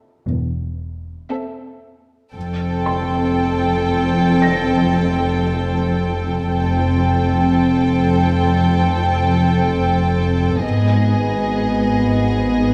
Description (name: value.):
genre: cinematic.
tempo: 58 BPM.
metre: 4/4.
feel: straight.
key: unclear.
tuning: A4 = 440 Hz.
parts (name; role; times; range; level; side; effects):
warm studio violin section; melody; 0.0-12.7 s; Eb5 to G5; -27 LUFS; equal; none.
rich studio violin section; second line; 0.0-12.7 s; Ab4 to A4; -27 LUFS; equal; none.
dark studio viola section; accompaniment; 0.0-12.7 s; Cb4 to C4; -24 LUFS; equal; none.
felt-muted upright piano; texture; 0.0-10.7 s; C6 to Bb6; -32 LUFS; equal; none.
dark chamber cello section; bass; 0.3-12.7 s; E2 to Ab2; -23 LUFS; equal; none.
dark studio double bass section; bass; 0.3-12.7 s; E1 to Ab1; -23 LUFS; equal; none.
room: wet scoring stage reverb, RT60 1.7 s.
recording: dark, warm production.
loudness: -18 LUFS.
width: mono.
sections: 0.0-12.7 A section.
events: none.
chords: 0.0 Am; 2.4 Fadd9; 10.6 Abm.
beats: 0.28 1.32 | 2.35 3.39 4.42 5.46 | 6.49 7.53 8.56 9.59 | 10.63 11.66 12.70.